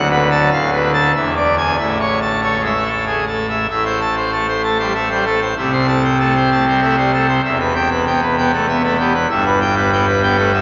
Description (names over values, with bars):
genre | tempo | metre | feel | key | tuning
classical, organ toccata | 96 BPM | 3/4 | straight | A major, A minor from 3.7 s | A4 = 440 Hz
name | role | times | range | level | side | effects
pipe organ, full organ | solo | 0.0-10.6 s | D1 to A5 | -16 LUFS | equal | none
room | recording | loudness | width
wet cathedral reverb, RT60 5.3 s | nothing above 7.6 kHz | -16 LUFS | mono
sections
0.0-3.7 A section; 3.7-10.6 B section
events
none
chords
0.0 Bm7/D; 0.5 Bm7b5/D; 1.1 E7; 1.8 A; 3.7 Am; 5.6 Am/C; 7.4 Em; 9.3 Em/G